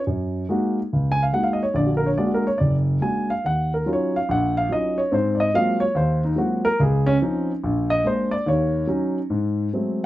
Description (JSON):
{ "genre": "solo jazz", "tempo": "143 BPM", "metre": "4/4", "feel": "swing 65% on 8ths, rubato", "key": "unclear", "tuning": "A4 = 439 Hz", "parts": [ { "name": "dark grand piano", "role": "solo", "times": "0.1-10.0 s", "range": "F#1 to Ab5", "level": "-19 LUFS", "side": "equal", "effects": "none" } ], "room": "little or no reverb", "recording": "close, detailed microphones", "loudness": "-19 LUFS", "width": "side -15 dB against mid", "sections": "0.0-10.1 A section", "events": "grand piano solo 0.0-10.1", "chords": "0.1 Gb69; 1.8 Bbaug7; 3.4 Ebm9; 5.1 Ab13; 6.8 Dbmaj9; 7.6 Bb7; 8.5 Ebm7; 9.3 Ab7b9" }